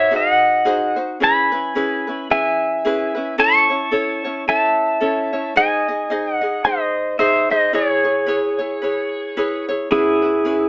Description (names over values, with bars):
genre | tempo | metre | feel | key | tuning
Hawaiian | 110 BPM | 4/4 | swing 58% on 8ths | C# minor | A4 = 438 Hz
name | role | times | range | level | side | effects
pedal steel guitar | melody | 0.0-10.7 s | E4 to C#6 | -16 LUFS | equal | none
ukulele | accompaniment | 0.0-10.7 s | C#4 to D#5 | -22 LUFS | equal | none
room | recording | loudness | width
light reverb | band playing live in one room, small speaker sound | -15 LUFS | side -25 dB against mid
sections
0.0-9.9 A section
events
none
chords
0.0 G#7; 1.2 C#m7; 3.4 A; 5.6 G#; 7.7 C#m7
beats
0.13 0.67 | 1.21 1.75 2.29 2.84 | 3.38 3.92 4.47 5.01 | 5.55 6.10 6.64 7.19 | 7.73 8.28 8.82 9.37 | 9.91 10.45